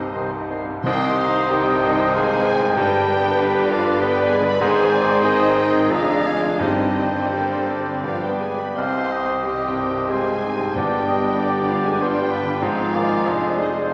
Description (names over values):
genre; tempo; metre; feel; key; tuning
classical, romantic movement for piano and orchestra; 82-100 BPM; 3/4; rubato; C minor; A4 = 440 Hz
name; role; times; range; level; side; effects
clear grand piano; melody; 0.0-13.9 s; C2 to D5; -26 LUFS; equal; none
warm symphonic violin section; melody; 0.0-13.9 s; B4 to G5; -36 LUFS; equal; none
mellow flute section; second line; 0.0-13.9 s; G4 to Eb5; -35 LUFS; equal; none
rich symphonic violin section; second line; 0.0-13.9 s; C5 to C6; -34 LUFS; equal; none
warm symphonic viola section; accompaniment; 0.0-13.9 s; G3 to Eb5; -30 LUFS; equal; none
mellow French horn section; sustained chords; 0.0-13.9 s; C3 to Eb4; -34 LUFS; equal; none
warm trombone section; sustained chords; 0.0-13.9 s; C3 to Eb4; -34 LUFS; equal; none
rich chamber double bass section; bass; 0.0-13.9 s; F1 to C2; -40 LUFS; equal; none
rich studio cello section; bass; 0.0-13.9 s; F2 to C3; -35 LUFS; equal; none
clear oboe; second line; 0.1-13.9 s; B4 to Bb5; -29 LUFS; equal; none
warm clarinet; second line; 0.1-13.9 s; C4 to C5; -28 LUFS; equal; none
mellow bassoon; accompaniment; 0.1-13.9 s; D3 to C4; -31 LUFS; equal; none
timpani; percussion; 0.8-1.8, 6.6-7.6, 10.7-11.7 s; G2 to C3; -35 LUFS; equal; none
dark trumpet section; stabs; 0.9-13.9 s; G4 to C5; -30 LUFS; equal; none
mellow tuba; bass; 0.9-13.9 s; F1 to C2; -36 LUFS; equal; none
room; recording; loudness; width
wet scoring stage reverb, RT60 1.9 s; none; -20 LUFS; mono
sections
0.8-13.9 A section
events
none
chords
0.0 Cm; 2.8 G; 4.6 Ab; 5.9 Ddim/F; 6.6 Gsus4; 8.0 G; 8.8 Cm; 10.7 G; 12.6 Ab; 13.3 Ddim/F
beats
0.14 | 0.84 1.49 2.15 | 2.77 3.39 4.00 | 4.61 5.25 5.91 | 6.60 7.32 8.05 | 8.77 9.45 10.11 | 10.75 11.39 12.00 | 12.61 13.26 13.93